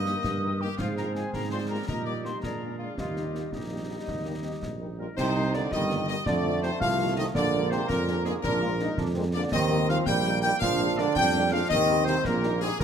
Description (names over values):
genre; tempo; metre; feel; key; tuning
military-style march for wind band; 110 BPM (dotted quarters); 6/8; straight; Eb major; A4 = 440 Hz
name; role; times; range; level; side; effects
clear trumpet section; melody; 0.0-12.8 s; Eb4 to G5; -32 LUFS; left 1 dB; none
clear woodwind section; second line; 0.0-12.8 s; G4 to G5; -32 LUFS; left 3 dB; none
hollow piccolo; second line; 0.0-4.9 s; Eb5 to Eb6; -37 LUFS; left 3 dB; none
clear trombone section; sustained chords; 0.0-12.8 s; G3 to F4; -33 LUFS; right 3 dB; none
mellow tuba; bass; 0.0-12.8 s; G1 to Bb2; -30 LUFS; right 2 dB; none
warm French horn section; accompaniment; 0.1-12.7 s; F3 to G4; -38 LUFS; left 4 dB; none
concert snare drum, concert bass drum and clash cymbals; drums; 0.1-12.8 s; none; -36 LUFS; left 1 dB; none
clear euphonium; second line; 5.0-12.8 s; Ab2 to G3; -31 LUFS; right 3 dB; none
room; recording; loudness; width
wet large studio reverb, RT60 1.4 s; none; -24 LUFS; side -8 dB against mid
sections
0.0-5.2 A section; 5.2-12.8 B section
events
none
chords
0.0 Eb/G; 0.8 Fm/Ab; 1.9 Eb/Bb; 2.4 Bb7; 3.0 Eb; 5.2 Cm7; 6.3 F7; 7.4 Bb7; 9.5 Eb; 10.6 Bb7; 11.7 Eb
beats
0.25 | 0.80 1.34 | 1.89 2.44 | 2.98 3.53 | 4.08 4.62 | 5.17 5.71 | 6.26 6.81 | 7.35 7.90 | 8.44 8.99 | 9.53 10.08 | 10.62 11.16 | 11.71 12.25 | 12.80